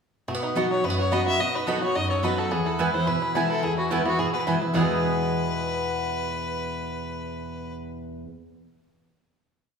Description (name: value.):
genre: bluegrass.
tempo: 215 BPM.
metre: 4/4.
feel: straight.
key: E major.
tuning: A4 = 440 Hz.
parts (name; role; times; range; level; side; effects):
picked steel-string acoustic guitar; accompaniment; 0.3-8.3 s; E2 to F#4; -27 LUFS; left 1 dB; none.
bluegrass banjo; arpeggios; 0.3-7.8 s; G#3 to A4; -30 LUFS; right 3 dB; none.
mandolin; stabs; 0.6-8.3 s; B3 to B5; -31 LUFS; right 4 dB; none.
clear fiddle; melody; 0.7-7.7 s; E4 to E5; -28 LUFS; left 2 dB; none.
room: wet large studio reverb, RT60 1.4 s.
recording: band playing live in one room.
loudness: -23 LUFS.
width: side -6 dB against mid.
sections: 0.3-4.7 A section; 4.7-7.0 final chord.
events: none.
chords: 0.3 B; 2.5 E.